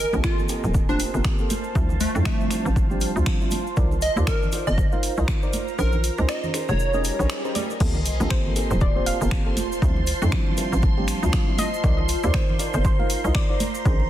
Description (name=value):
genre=deep house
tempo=119 BPM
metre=4/4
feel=swing 58% on 16ths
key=G minor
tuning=A4 = 440 Hz
part: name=plucky unison lead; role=melody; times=0.0-7.2 s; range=A3 to Eb5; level=-28 LUFS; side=right 1 dB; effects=phaser, ping-pong delay
part: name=hollow knocking FM bass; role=bass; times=0.0-14.1 s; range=D1 to F2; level=-24 LUFS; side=equal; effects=sidechain pumping
part: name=ethereal airy pad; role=texture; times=0.0-14.1 s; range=F4 to Bb5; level=-32 LUFS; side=right 2 dB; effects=ensemble chorus, built-in reverb, phaser, sidechain pumping
part: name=mellow FM electric piano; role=stabs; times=0.1-14.0 s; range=F3 to F5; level=-30 LUFS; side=right 1 dB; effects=chorus, tremolo, sidechain pumping, ping-pong delay
part: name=cabasa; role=percussion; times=0.1-14.0 s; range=none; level=-38 LUFS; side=right 6 dB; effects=none
part: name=congas and bongos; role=percussion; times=0.1-14.1 s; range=none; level=-32 LUFS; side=right 2 dB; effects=none
part: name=deep house drum kit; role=drums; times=0.2-13.7 s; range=crash cymbal, finger snaps, hi-hat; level=-31 LUFS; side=left 1 dB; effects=studio reverb, soft clipping on snare
part: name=electronic kick drum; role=drums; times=0.2-14.0 s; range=none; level=-22 LUFS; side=equal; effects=studio reverb
part: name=swell and sub drop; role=sound effects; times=7.0-9.8 s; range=none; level=-31 LUFS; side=equal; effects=none
part: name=soft round pluck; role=melody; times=7.6-13.7 s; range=C5 to F5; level=-32 LUFS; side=left 1 dB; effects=chorus, ping-pong delay
part: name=string machine, violins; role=texture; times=7.8-14.1 s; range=C6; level=-35 LUFS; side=equal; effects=ensemble chorus, sidechain pumping
room=light reverb, digital ambience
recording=dense, heavily limited modern master, vinyl crackle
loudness=-20 LUFS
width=side -12 dB against mid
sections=0.0-7.8 A section; 7.8-14.1 B section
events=kick drops out 5.8-7.8; swell 7.0-7.8; drop 7.8-14.1; impact 7.8-9.8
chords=0.0 Gm11; 1.5 Dm11; 3.8 Cm11; 5.8 Bbm11; 7.8 Gm11; 9.6 Dm11; 11.8 Cm11